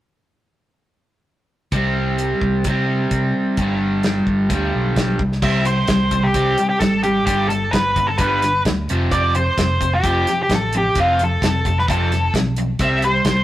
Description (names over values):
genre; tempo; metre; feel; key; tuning
classic rock; 130 BPM; 4/4; straight; unclear; A4 = 441 Hz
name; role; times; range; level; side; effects
overdriven electric guitar; riff; 1.7-13.4 s; F2 to C4; -21 LUFS; right 1 dB; none
picked electric bass; bass; 1.7-13.4 s; F1 to C3; -22 LUFS; equal; none
damped 70s drum kit; drums; 1.7-13.4 s; crash cymbal, hi-hat, kick drum, snare drum; -22 LUFS; equal; none
octave-fuzz lead guitar; melody; 5.4-13.4 s; F4 to E5; -19 LUFS; equal; distortion
room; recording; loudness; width
light reverb; rough rehearsal-room recording, warm saturation; -16 LUFS; side -14 dB against mid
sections
1.7-5.4 A section; 5.4-13.4 B section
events
none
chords
1.7 C5; 3.6 G; 5.2 N.C.; 5.4 C5; 7.3 G; 8.9 F; 12.8 C